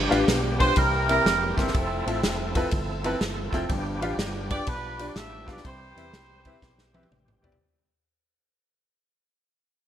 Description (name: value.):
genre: uptempo gospel.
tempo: 123 BPM.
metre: 4/4.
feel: swing 66% on 8ths.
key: C major.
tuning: A4 = 439 Hz.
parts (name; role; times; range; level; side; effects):
warm concert grand piano; accompaniment; 0.0-7.5 s; G2 to G5; -28 LUFS; left 2 dB; lush chorus.
overdriven tonewheel organ; sustained chords; 0.0-7.6 s; E3 to A4; -34 LUFS; right 2 dB; slow rotary speaker, chorus vibrato.
fingered electric bass; bass; 0.0-7.6 s; F1 to E2; -31 LUFS; equal; none.
warm soul drum kit; drums; 0.1-7.6 s; kick drum, ride cymbal, snare drum, toms; -27 LUFS; equal; gated reverb.
warm horn section; melody; 0.6-7.1 s; C4 to E5; -27 LUFS; right 2 dB; digital delay.
room: moderate plate reverb, RT60 1.4 s.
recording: bright 1980s-style digital production.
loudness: -23 LUFS.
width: side -10 dB against mid.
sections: 0.0-7.6 A section.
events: fade-out 0.0-7.6; drum fill 6.6-7.6.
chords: 0.0 G7; 0.8 C7; 1.7 Fmaj7; 3.7 G7; 5.6 Cmaj7.